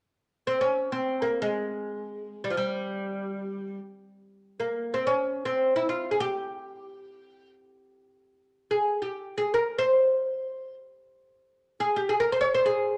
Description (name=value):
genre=arabic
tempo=free time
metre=none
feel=none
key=C maqam hijaz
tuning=A4 = 440 Hz
part: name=oud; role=melody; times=0.5-13.0 s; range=F3 to Db5+25c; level=-28 LUFS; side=equal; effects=none
room=light reverb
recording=none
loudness=-28 LUFS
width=mono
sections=0.0-13.0 A section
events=none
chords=none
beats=free time